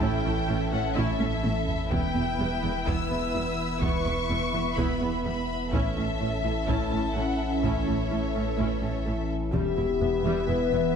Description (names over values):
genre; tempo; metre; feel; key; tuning
cinematic, hybrid orchestral and electronic film score; 126 BPM; 4/4; straight; E dorian; A4 = 440 Hz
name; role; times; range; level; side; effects
rich symphonic violin section; melody; 0.0-11.0 s; C#5 to E6; -34 LUFS; left 4 dB; none
warm symphonic violin section; second line; 0.0-11.0 s; A4 to E5; -34 LUFS; left 2 dB; none
warm symphonic viola section; accompaniment; 0.0-10.8 s; G3 to E4; -36 LUFS; right 2 dB; none
phased analog pad; sustained chords; 0.0-11.0 s; E3 to B4; -32 LUFS; right 1 dB; phaser, chorus
thumb-piano-like synth pluck; arpeggios; 0.0-10.9 s; E3 to A4; -36 LUFS; equal; chorus, phaser
rich studio double bass section; bass; 0.0-10.8 s; E1 to A1; -34 LUFS; right 3 dB; none
rich symphonic cello section; bass; 0.0-10.8 s; E2 to A2; -35 LUFS; right 4 dB; none
saturated sub bass; bass; 0.0-11.0 s; E1 to A1; -34 LUFS; equal; none
taiko ensemble; drums; 0.0-10.0 s; none; -33 LUFS; equal; none
dark French horn section; sustained chords; 9.1-11.0 s; E4 to B4; -28 LUFS; left 7 dB; none
clear trombone section; sustained chords; 9.5-11.0 s; E3 to B3; -34 LUFS; right 2 dB; none
room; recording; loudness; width
moderate scoring stage reverb, RT60 1.9 s; none; -24 LUFS; side -7 dB against mid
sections
0.0-9.5 A section; 9.5-11.0 B section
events
drum fill 1.2-1.9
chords
0.0 A; 1.9 Em; 5.7 A; 9.5 Em